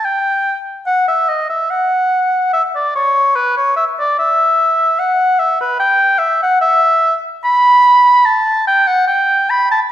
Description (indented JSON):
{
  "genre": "classical, baroque-style fantasia for unaccompanied oboe",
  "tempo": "73 BPM",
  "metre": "4/4",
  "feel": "rubato",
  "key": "unclear",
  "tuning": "A4 = 438 Hz",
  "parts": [
    { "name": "warm oboe", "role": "solo", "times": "0.0-9.8 s", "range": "B4 to B5", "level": "-11 LUFS", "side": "equal", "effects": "none" }
  ],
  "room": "wet recital hall reverb, RT60 1.4 s",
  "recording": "heard from further back in the room",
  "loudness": "-11 LUFS",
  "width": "side -12 dB against mid",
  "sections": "0.0-9.9 A section",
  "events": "none",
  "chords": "none"
}